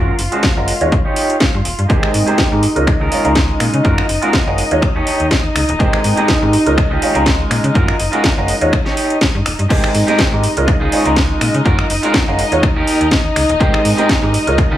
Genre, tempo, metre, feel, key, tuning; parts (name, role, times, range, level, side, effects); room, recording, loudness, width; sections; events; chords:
filtered disco house; 123 BPM; 4/4; swing 54% on 16ths; Ab major; A4 = 440 Hz
warm baby grand piano; accompaniment; 0.0-14.8 s; Ab3 to G5; -18 LUFS; right 1 dB; phaser, vintage 12-bit sampler grit, sidechain pumping, low-pass filter
dark studio string section; sustained chords; 0.0-14.8 s; Eb4 to F5; -21 LUFS; left 2 dB; sidechain pumping, low-pass filter
electric guitar at the edge of break-up; riff; 0.0-14.8 s; Eb4 to Eb5; -21 LUFS; right 2 dB; sidechain pumping, low-pass filter
slap-like FM bass; bass; 0.0-14.8 s; Eb1 to Db3; -18 LUFS; equal; sidechain pumping, low-pass filter
house drum kit; drums; 0.2-14.7 s; crash cymbal, finger snaps, hi-hat, snare drum; -19 LUFS; equal; sidechain pumping on hats, sidechain pumping on cymbals
electronic kick drum; drums; 0.4-14.7 s; -17 LUFS; equal; overdrive
light reverb; small room ambience; -12 LUFS; side -12 dB against mid
0.0-14.8 A section
filter sweep 0.0-14.8
0.0 Gbmaj7; 0.9 Eb7; 1.9 Abmaj7; 2.9 Db69; 3.9 Gbmaj7; 4.8 Eb7; 5.8 Abmaj7; 6.8 Db69; 7.8 Gbmaj7; 8.7 Eb7; 9.7 Abmaj7; 10.7 Db69; 11.7 Gbmaj7; 12.6 Eb7; 13.6 Abmaj7